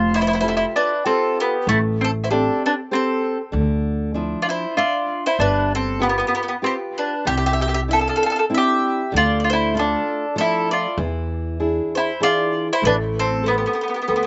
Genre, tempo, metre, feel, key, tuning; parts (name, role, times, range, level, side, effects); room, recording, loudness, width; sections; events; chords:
italian folk, Italian serenade; 97 BPM; 3/4; swing 55% on 8ths; A minor; A4 = 439 Hz
mandolin; melody; 0.0-14.3 s; A3 to A4; -22 LUFS; equal; slapback echo
bowl-back mandolin; second line; 0.0-14.3 s; E4 to F5; -29 LUFS; equal; slapback echo
flamenco guitar; accompaniment; 0.0-14.3 s; C3 to E5; -27 LUFS; equal; slapback echo
upright bass; bass; 0.0-14.2 s; F1 to E2; -25 LUFS; equal
little or no reverb; recorded outdoors, with no room sound, nothing above 7.8 kHz; -20 LUFS; mono
0.0-14.3 A section
0.0 Fadd9; 1.7 Am7; 3.5 Dmadd9; 5.4 G7; 7.3 Cadd9; 9.1 Dm; 11.0 E7; 12.8 Amadd9